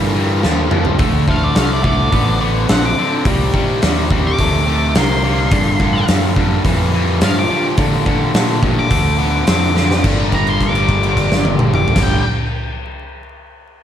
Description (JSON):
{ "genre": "blues rock power trio and southern rock", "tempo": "106 BPM", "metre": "4/4", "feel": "straight", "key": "G minor", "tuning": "A4 = 440 Hz", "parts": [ { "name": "bright tonewheel organ", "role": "sustained chords", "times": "0.0-12.2 s", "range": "A3 to Bb4", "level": "-29 LUFS", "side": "right 3 dB", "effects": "none" }, { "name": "distorted electric guitar", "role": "riff", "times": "0.0-12.2 s", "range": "G2 to C4", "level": "-18 LUFS", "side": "left 1 dB", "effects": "overdrive, slapback echo" }, { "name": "fingered electric bass", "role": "bass", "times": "0.0-12.2 s", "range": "G1 to D3", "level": "-19 LUFS", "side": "equal", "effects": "none" }, { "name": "huge arena drum kit", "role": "drums", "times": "0.4-12.1 s", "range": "crash cymbal, hi-hat, kick drum, snare drum, toms", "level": "-17 LUFS", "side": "equal", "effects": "none" }, { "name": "octave-fuzz lead guitar", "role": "melody", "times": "1.3-12.3 s", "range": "D5 to D6", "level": "-21 LUFS", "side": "left 1 dB", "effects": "distortion, slapback echo" } ], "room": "light reverb, studio reverb", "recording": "vinyl crackle", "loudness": "-13 LUFS", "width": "side -10 dB against mid", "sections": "0.0-10.0 A section; 10.0-12.3 B section", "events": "drum fill 0.4-1.0, 9.8; held note 10.0-12.0", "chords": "0.0 Gm9; 1.0 D7#9; 3.3 Cm9; 5.5 Gm9; 8.9 D7#9; 10.0 Gm9", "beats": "0.43 | 0.99 1.56 2.12 2.69 | 3.25 3.82 4.38 4.95 | 5.51 6.08 6.65 7.21 | 7.78 8.34 8.91 9.47 | 10.04 10.61 11.17 11.74" }